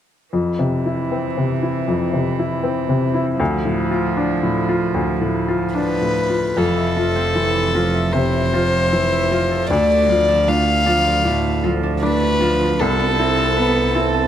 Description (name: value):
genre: neoclassical piano and strings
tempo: 77 BPM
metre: 4/4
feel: rubato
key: unclear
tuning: A4 = 440 Hz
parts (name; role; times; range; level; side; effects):
- rich cello; second line; 0.3-14.3 s; E3 to C4; -24 LUFS; right 10 dB; none
- clear upright piano; accompaniment; 0.3-14.3 s; C2 to F4; -20 LUFS; left 2 dB; none
- warm violin; melody; 5.8-14.3 s; A4 to F5; -19 LUFS; left 2 dB; none
- concert harp; arpeggios; 6.6-14.3 s; C4 to A5; -26 LUFS; right 3 dB; slapback echo
- rich double bass; bass; 6.6-14.3 s; F1 to D2; -22 LUFS; right 1 dB; none
room: light reverb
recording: close, detailed microphones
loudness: -16 LUFS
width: side -10 dB against mid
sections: 0.3-6.6 A section; 6.6-14.3 B section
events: none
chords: 0.3 F5; 3.4 Dm; 6.6 Fmaj7; 9.7 Dm; 12.8 Amadd9/C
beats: | 0.33 1.11 1.88 2.64 | 3.40 4.17 4.95 5.75 | 6.57 7.36 8.14 8.92 | 9.71 10.48 11.26 12.03 | 12.80 13.56